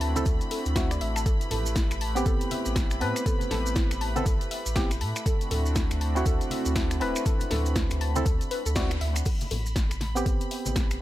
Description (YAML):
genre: deep house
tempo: 120 BPM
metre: 4/4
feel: swing 60% on 16ths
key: A dorian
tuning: A4 = 443 Hz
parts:
  - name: warm analog pad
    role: sustained chords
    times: 0.0-9.2 s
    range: A3 to B4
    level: -36 LUFS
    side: right 1 dB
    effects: chorus, sidechain pumping
  - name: soft round pluck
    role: arpeggios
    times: 0.0-10.8 s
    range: E4 to A5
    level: -36 LUFS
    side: left 1 dB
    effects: chorus, sidechain pumping, digital delay
  - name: percussive organ stab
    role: stabs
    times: 0.0-11.0 s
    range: B3 to B4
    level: -31 LUFS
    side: right 1 dB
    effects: chorus, cassette tape, sidechain pumping, digital delay
  - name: round analog bass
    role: bass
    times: 0.0-11.0 s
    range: D1 to A2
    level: -29 LUFS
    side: equal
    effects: tube saturation, sidechain pumping
  - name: punchy analog drum machine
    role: drums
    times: 0.0-11.0 s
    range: crash cymbal, finger snaps, hi-hat, snare drum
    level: -34 LUFS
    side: left 1 dB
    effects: overdrive
  - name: rich symphonic violin section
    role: texture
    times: 0.0-11.0 s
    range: B5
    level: -40 LUFS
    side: left 2 dB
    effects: sidechain pumping
  - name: congas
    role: percussion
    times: 0.2-10.7 s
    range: none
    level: -38 LUFS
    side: left 2 dB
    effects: none
  - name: maracas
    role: percussion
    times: 0.2-11.0 s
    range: none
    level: -38 LUFS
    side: right 2 dB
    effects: none
  - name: electronic kick drum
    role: drums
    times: 0.3-10.9 s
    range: none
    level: -26 LUFS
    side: equal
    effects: none
room: little or no reverb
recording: none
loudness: -24 LUFS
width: side -15 dB against mid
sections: 0.0-9.3 A section; 9.3-11.0 B section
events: drop 0.0-9.3; band accent 8.8; filter sweep on synth arpeggio sound 9.3-11.0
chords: 0.0 D9; 1.3 Am9; 5.3 D9; 9.3 Am9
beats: 0.26 0.76 | 1.26 1.76 2.26 2.76 | 3.26 3.76 4.26 4.76 | 5.26 5.76 6.26 6.76 | 7.26 7.76 8.26 8.76 | 9.26 9.76 10.26 10.76